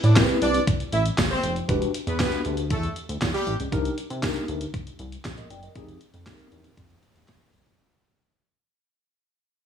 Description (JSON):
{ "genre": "early-eighties boogie funk", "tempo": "118 BPM", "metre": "4/4", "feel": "straight", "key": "unclear", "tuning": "A4 = 440 Hz", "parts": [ { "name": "clear horn section", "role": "second line", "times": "0.0-3.5 s", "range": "G3 to E5", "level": "-28 LUFS", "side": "right 1 dB", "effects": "none" }, { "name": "chorused synth bass", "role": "bass", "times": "0.0-7.8 s", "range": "E1 to C3", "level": "-24 LUFS", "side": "equal", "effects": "none" }, { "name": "crisp 8-bit digital drum machine", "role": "drums", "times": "0.0-7.8 s", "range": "handclaps, hi-hat, kick drum, snare drum", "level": "-26 LUFS", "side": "equal", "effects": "gated reverb" }, { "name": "mellow tine electric piano", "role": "accompaniment", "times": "0.2-6.7 s", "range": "C4 to G5", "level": "-29 LUFS", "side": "left 1 dB", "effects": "medium stereo tremolo" }, { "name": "tambourine", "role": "percussion", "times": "0.2-7.4 s", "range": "none", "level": "-41 LUFS", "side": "right 7 dB", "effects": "none" } ], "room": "light reverb, digital ambience", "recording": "studio ambience", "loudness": "-22 LUFS", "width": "side -8 dB against mid", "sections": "0.0-7.8 A section", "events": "fade-out 0.0-7.8", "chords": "0.0 Am9; 1.7 Em9; 3.7 Cm9; 5.8 Fm9" }